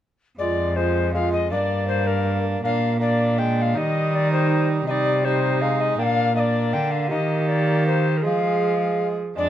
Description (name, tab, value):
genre	classical, renaissance-style consort dance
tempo	160 BPM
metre	3/4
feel	straight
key	F dorian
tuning	A4 = 440 Hz
part	alto recorder	melody	0.4-9.5 s	Bb4 to G5	-24 LUFS	left 5 dB	none
part	warm viola	second line	0.4-9.5 s	D4 to Ab4	-27 LUFS	right 6 dB	none
part	clear bassoon	accompaniment	0.4-9.5 s	G3 to Bb3	-27 LUFS	left 2 dB	none
part	rich cello	bass	0.4-9.5 s	F2 to F3	-23 LUFS	right 2 dB	none
room	light reverb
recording	close, detailed microphones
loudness	-19 LUFS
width	side -11 dB against mid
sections	0.4-9.4 A section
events	none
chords	0.4 Fm; 1.5 Gm; 2.6 Bb; 3.8 Eb; 4.9 Cm; 6.0 Bb; 7.1 Eb; 8.2 Fm